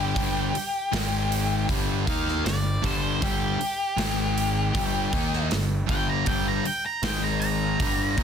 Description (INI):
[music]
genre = quiet-loud alternative rock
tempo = 79 BPM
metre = 4/4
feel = straight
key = G minor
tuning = A4 = 440 Hz
[part]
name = octave-fuzz lead guitar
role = melody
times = 0.0-8.2 s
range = G4 to Bb5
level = -29 LUFS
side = equal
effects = distortion
[part]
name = crunchy overdriven guitar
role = riff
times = 0.0-8.2 s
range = G2 to Eb4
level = -29 LUFS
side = left 11 dB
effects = none
[part]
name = distorted electric guitar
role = riff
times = 0.0-8.2 s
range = G2 to Eb4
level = -31 LUFS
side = right 13 dB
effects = overdrive
[part]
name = fuzz picked electric bass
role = bass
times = 0.0-8.2 s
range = G1 to Eb2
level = -29 LUFS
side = equal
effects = overdrive
[part]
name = big rock drum kit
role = drums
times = 0.2-8.2 s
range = hi-hat, kick drum, snare drum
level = -30 LUFS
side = right 1 dB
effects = none
[sound]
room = light reverb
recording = dense, heavily limited modern master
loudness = -23 LUFS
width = side -7 dB against mid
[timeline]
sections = 0.0-8.2 A section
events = lead electric guitar solo 0.0-8.2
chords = 0.0 G5; 0.9 Ab5; 1.7 Gm; 4.0 Ab5; 4.7 Gm; 7.0 Ab5